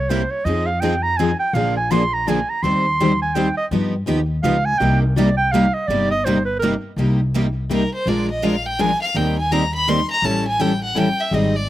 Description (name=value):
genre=acoustic string swing (jazz manouche)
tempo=166 BPM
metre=3/4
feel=swing 62% on 8ths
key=C minor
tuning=A4 = 440 Hz
part: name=breathy clarinet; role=second line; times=0.0-6.7 s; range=Bb4 to C6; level=-20 LUFS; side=right 3 dB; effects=none
part: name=upright bass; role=bass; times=0.0-11.7 s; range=G1 to G2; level=-23 LUFS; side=left 1 dB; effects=none
part: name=picked steel-string acoustic guitar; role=accompaniment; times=0.1-11.5 s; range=C3 to C5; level=-22 LUFS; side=left 4 dB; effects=none
part: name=picked steel-string acoustic guitar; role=accompaniment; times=0.1-11.5 s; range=C3 to C5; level=-25 LUFS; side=right 6 dB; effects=none
part: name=clear violin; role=melody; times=7.7-11.7 s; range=Bb4 to C6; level=-21 LUFS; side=equal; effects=slapback echo
room=little or no reverb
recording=recorded outdoors, with no room sound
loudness=-17 LUFS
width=side -14 dB against mid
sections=0.0-7.0 A section; 7.0-11.7 A section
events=clarinet solo 0.0-7.0; violin solo 7.0-11.7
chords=0.5 Fm7; 1.5 Bb7; 2.6 Eb6; 3.7 Gaug7; 4.8 Cm7; 8.1 Bb7; 9.2 Eb6; 10.2 A7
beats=0.10 | 0.46 0.82 1.19 | 1.55 1.91 2.27 | 2.63 3.00 3.36 | 3.72 4.08 4.44 | 4.80 5.17 5.53 | 5.89 6.25 6.62 | 6.98 7.34 7.70 | 8.06 8.43 8.79 | 9.15 9.51 9.88 | 10.24 10.60 10.96 | 11.32 11.69